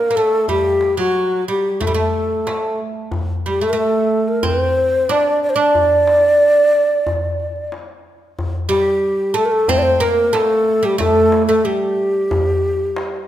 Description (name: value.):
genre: Arabic maqam ensemble.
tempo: 91 BPM.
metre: 4/4.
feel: straight.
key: D maqam hijaz.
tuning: A4 = 440 Hz.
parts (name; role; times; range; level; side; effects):
breathy mellow ney; melody; 0.0-13.3 s; F#4 to D5; -15 LUFS; equal; none.
oud; second line; 0.0-13.3 s; F#3 to D4; -21 LUFS; right 4 dB; none.
darbuka; percussion; 0.2-13.1 s; none; -24 LUFS; left 2 dB; none.
room: light reverb.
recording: minimal, uncompressed stereo recording.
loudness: -14 LUFS.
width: side -12 dB against mid.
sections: 0.0-8.4 A section; 8.4-13.3 B section.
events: none.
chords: none.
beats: | 0.49 1.14 1.80 2.46 | 3.12 3.77 4.43 5.09 | 5.74 6.40 7.06 7.71 | 8.37 9.03 9.68 10.34 | 11.00 11.65 12.31 12.97.